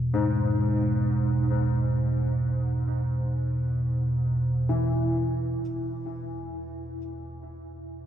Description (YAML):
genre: ambient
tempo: free time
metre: none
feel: none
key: E major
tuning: A4 = 440 Hz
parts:
  - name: deep rumbling drone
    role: drone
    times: 0.0-8.1 s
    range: E2 to B2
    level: -26 LUFS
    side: right 1 dB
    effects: built-in reverb
  - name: dark grand piano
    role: arpeggios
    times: 0.1-8.1 s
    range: G#2 to E3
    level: -30 LUFS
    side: left 2 dB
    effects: ensemble chorus, ping-pong delay
room: wet huge ambient reverb, RT60 7.8 s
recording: dreamy mix soaked in reverb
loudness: -24 LUFS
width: side -10 dB against mid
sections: 0.0-5.6 A section; 5.6-8.1 B section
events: filter sweep on synth drone 0.0-5.6, 5.6-8.1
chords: 0.0 E; 5.6 E5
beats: free time